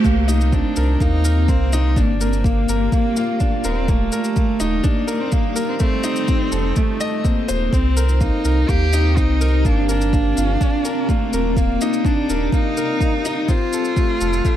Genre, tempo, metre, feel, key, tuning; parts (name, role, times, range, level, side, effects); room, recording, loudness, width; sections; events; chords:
piano and strings electronica; 125 BPM; 4/4; straight; C dorian; A4 = 439 Hz
dark cello; melody; 0.0-14.6 s; A3 to G4; -23 LUFS; equal
granular cloud pad; sustained chords; 0.0-14.6 s; G3 to D5; -26 LUFS; equal; built-in reverb, sidechain pumping
clear grand piano; riff; 0.0-14.6 s; A3 to Eb5; -24 LUFS; left 1 dB
warm sub bass; bass; 0.0-14.4 s; Eb1 to Eb2; -19 LUFS; equal; sidechain pumping
electronic kick drum; drums; 0.0-14.5 s; -19 LUFS; equal
shaker; drums; 0.0-14.5 s; -31 LUFS; left 2 dB
light reverb; -16 LUFS; side -11 dB against mid
0.0-14.6 A section
drop 0.0-14.6
0.0 Cm7; 2.0 Gm7; 3.9 Ebmaj7; 5.8 F7; 7.7 Cm7; 9.6 Gm7; 11.6 Ebmaj7; 13.5 F